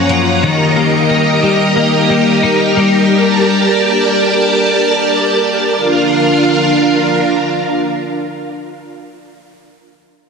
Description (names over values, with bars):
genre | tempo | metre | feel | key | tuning
dream pop | 90 BPM | 4/4 | straight | Bb major | A4 = 441 Hz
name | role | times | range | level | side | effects
string machine, full ensemble | sustained chords | 0.0-8.8 s | D4 to Bb5 | -12 LUFS | right 1 dB | ensemble chorus
twelve-string electric guitar | arpeggios | 0.0-3.7 s | Gb2 to Eb4 | -13 LUFS | left 4 dB | ensemble chorus, ping-pong delay
room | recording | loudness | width
wet huge ambient reverb, RT60 3.8 s | dense, heavily limited modern master | -10 LUFS | side -5 dB against mid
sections
0.0-5.8 A section; 5.8-8.4 B section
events
none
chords
0.4 Eb; 3.1 Gmadd9; 5.8 Bb